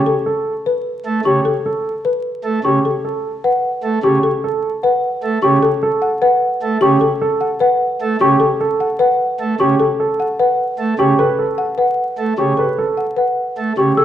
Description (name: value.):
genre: classical, minimalist pattern music.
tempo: 302 BPM (eighths).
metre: 7/8.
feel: straight.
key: unclear.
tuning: A4 = 439 Hz.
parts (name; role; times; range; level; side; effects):
folk marimba with soft mallets; melody; 0.0-14.0 s; G4 to F#5; -19 LUFS; left 4 dB; none.
celesta; arpeggios; 0.0-14.0 s; F#5 to E6; -19 LUFS; equal; none.
warm grand piano; arpeggios; 0.0-14.0 s; G4 to B4; -20 LUFS; right 5 dB; none.
pipe organ, principal chorus; accompaniment; 1.1-13.9 s; C#3 to A3; -19 LUFS; right 2 dB; none.
room: wet recital hall reverb, RT60 1.4 s.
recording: dark, warm production, vinyl crackle.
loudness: -14 LUFS.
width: side -11 dB against mid.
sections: 0.0-14.0 A section.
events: none.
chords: 0.0 A7; 2.8 A13/C#.